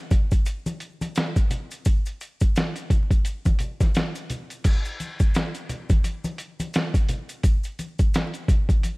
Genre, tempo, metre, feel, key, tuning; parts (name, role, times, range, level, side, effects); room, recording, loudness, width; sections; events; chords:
hip hop; 86 BPM; 4/4; swing 58% on 16ths
dusty soul sampler-style drum kit; drums; 0.1-9.0 s; crash cymbal, hi-hat, kick drum, snare drum; -21 LUFS; equal; overdrive
congas and maracas; percussion; 0.1-9.0 s; -34 LUFS; left 1 dB
digital ambience; vinyl crackle; -22 LUFS; side -26 dB against mid
0.0-4.7 A section; 4.7-9.0 B section